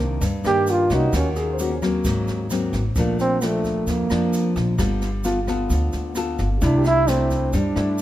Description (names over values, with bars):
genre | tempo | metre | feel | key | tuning
bossa nova | 131 BPM | 4/4 | straight | unclear | A4 = 442 Hz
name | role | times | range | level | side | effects
nylon-string guitar | accompaniment | 0.0-8.0 s | F2 to A4 | -24 LUFS | left 2 dB | none
upright bass | bass | 0.0-8.0 s | G1 to G2 | -24 LUFS | equal | none
jazz brush drum kit | drums | 0.2-8.0 s | kick drum, rim click, snare drum | -30 LUFS | equal | none
egg shaker | percussion | 0.2-8.0 s | none | -39 LUFS | right 4 dB | none
mellow trombone | melody | 0.5-8.0 s | A3 to G4 | -22 LUFS | right 2 dB | none
warm concert grand piano | accompaniment | 1.4-8.0 s | Db4 to C5 | -29 LUFS | right 2 dB | none
room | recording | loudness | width
light reverb | minimal, uncompressed stereo recording | -19 LUFS | side -13 dB against mid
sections
0.0-8.0 A section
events
trombone solo 0.0-8.0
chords
0.0 Cm9; 1.1 Ebm7; 2.0 Ab9; 3.0 Bbmaj7; 4.8 G9; 6.6 C69